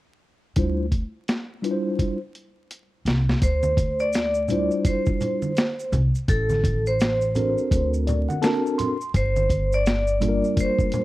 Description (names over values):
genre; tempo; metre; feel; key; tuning
hip hop, jazz-hop; 84 BPM; 4/4; swing 61% on 16ths; D minor; A4 = 440 Hz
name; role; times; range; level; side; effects
mellow tine electric piano; accompaniment; 0.6-11.0 s; G3 to C6; -24 LUFS; equal; medium stereo tremolo
upright bass; bass; 0.6-10.4 s; G1 to D2; -24 LUFS; equal; none
boom bap sampler-style drum kit; drums; 0.6-11.0 s; hi-hat, kick drum, snare drum; -23 LUFS; equal; none
vibraphone with medium hard mallets; melody; 3.4-11.0 s; A4 to D5; -24 LUFS; equal; none
maracas and congas; percussion; 3.4-11.0 s; none; -31 LUFS; right 1 dB; none
room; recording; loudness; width
small room ambience; dry, close 1970s-style studio recording, vinyl crackle; -20 LUFS; side -17 dB against mid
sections
0.6-3.4 A section; 3.4-11.0 B section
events
drum fill 2.0-3.4; tine electric piano fill 7.7-9.1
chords
0.6 Dm11; 6.3 Amadd11; 7.7 D7b13; 9.1 Gm7